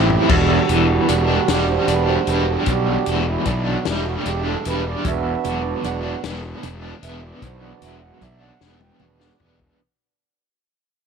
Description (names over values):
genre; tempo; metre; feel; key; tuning
psychedelic rock; 50 BPM (dotted quarters); 6/8; straight; E minor; A4 = 439 Hz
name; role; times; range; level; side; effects
pedal harmonium; sustained chords; 0.0-9.6 s; G3 to G5; -23 LUFS; right 11 dB; none
biting overdriven guitar; riff; 0.0-9.8 s; E2 to E4; -23 LUFS; left 1 dB; tremolo
fuzz fingered electric bass; bass; 0.0-9.7 s; E1 to B1; -23 LUFS; left 1 dB; overdrive
vintage drum kit; drums; 0.1-9.8 s; crash cymbal, hi-hat, kick drum, snare drum, toms; -24 LUFS; left 5 dB; none
congas; percussion; 5.0-9.2 s; none; -35 LUFS; right 9 dB; none
room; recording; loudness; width
light reverb, small room ambience; 1960s-style stereo; -17 LUFS; side -6 dB against mid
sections
0.3-9.8 A section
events
drum fill 0.0, 8.6-9.8; fade-out 0.3-9.8; harmonium solo 0.3-9.8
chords
0.3 Em7; 5.0 Bm/E